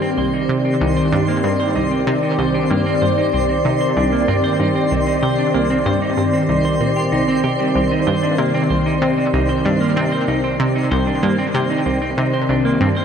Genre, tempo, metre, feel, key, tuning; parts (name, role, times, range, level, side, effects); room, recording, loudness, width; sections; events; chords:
ambient, sequencer-driven space music; 95 BPM; 4/4; straight; C minor; A4 = 441 Hz
lush unison pad; sustained chords; 0.0-13.0 s; Eb3 to D5; -18 LUFS; equal; chorus
semi-hollow electric guitar; arpeggios; 0.0-13.0 s; G3 to C5; -23 LUFS; right 2 dB; auto-pan, tape echo
twinkling granular texture; texture; 0.0-13.0 s; C5; -28 LUFS; right 1 dB; built-in reverb
analog pluck; riff; 0.2-12.9 s; C2 to C3; -20 LUFS; equal; chorus, tape echo
wet lush hall reverb, RT60 2.4 s; dreamy mix soaked in reverb; -15 LUFS; side -7 dB against mid
0.0-13.0 A section
0.0 Cm